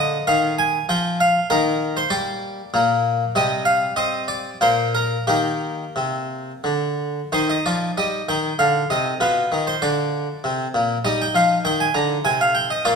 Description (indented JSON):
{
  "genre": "classical, baroque-style suite movement for harpsichord",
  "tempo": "86-101 BPM",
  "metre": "3/4",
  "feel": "rubato",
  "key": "Eb major, C minor from 7.3 s",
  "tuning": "A4 = 440 Hz",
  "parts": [
    { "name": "harpsichord", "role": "solo", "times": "0.0-13.0 s", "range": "Bb2 to Bb5", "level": "-18 LUFS", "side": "equal", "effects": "none" }
  ],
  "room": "moderate recital hall reverb, RT60 1.5 s",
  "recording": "minimal, uncompressed stereo recording",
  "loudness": "-18 LUFS",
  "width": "side -5 dB against mid",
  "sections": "0.0-7.3 A section; 7.3-13.0 A section",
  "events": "none",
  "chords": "0.0 Bb/D; 1.5 Eb; 2.7 N.C.; 3.4 C5; 4.6 N.C.; 5.3 Eb; 7.3 Cm/Eb; 9.2 Bdim; 10.4 Bbadd9; 11.0 Eb",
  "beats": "0.28 0.89 | 1.50 2.11 2.73 | 3.35 3.97 4.61 | 5.29 5.97 6.65 | 7.33 7.98 8.60 | 9.21 9.81 10.43 | 11.04 11.64 12.24 | 12.84"
}